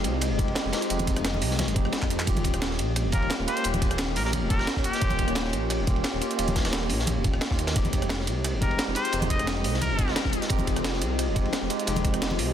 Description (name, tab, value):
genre	liquid drum and bass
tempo	175 BPM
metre	4/4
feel	straight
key	F minor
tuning	A4 = 438 Hz
part	tine electric piano	accompaniment	0.0-12.5 s	Ab3 to G4	-32 LUFS	equal	slow stereo tremolo, digital delay
part	ethereal airy pad	sustained chords	0.0-12.5 s	Ab3 to Eb5	-33 LUFS	equal	ensemble chorus, built-in reverb, phaser, sidechain pumping
part	dark detuned saw bass	bass	0.0-12.5 s	Eb1 to F2	-29 LUFS	equal	none
part	breakbeat sampler-style drum kit	drums	0.0-12.5 s	handclaps, hi-hat, rim click, snare drum	-31 LUFS	right 1 dB	none
part	crunchy breakbeat drum kit	drums	0.0-12.5 s	ride cymbal, snare drum	-35 LUFS	equal	high-pass filter on cymbals, high-pass filter on snare, high-pass filter on room
part	electronic kick drum	drums	0.4-12.1 s	none	-27 LUFS	equal	none
part	congas	percussion	1.0-12.4 s	none	-34 LUFS	equal	none
part	trumpet with straight mute	melody	3.1-5.3, 8.6-10.2 s	G4 to Eb5	-31 LUFS	left 1 dB	ping-pong delay
room	light reverb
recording	dense, heavily limited modern master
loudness	-23 LUFS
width	side -10 dB against mid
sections	0.0-12.5 A section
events	drum fill 2.0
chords	0.0 Fm7; 2.3 Eb7; 7.8 Fm7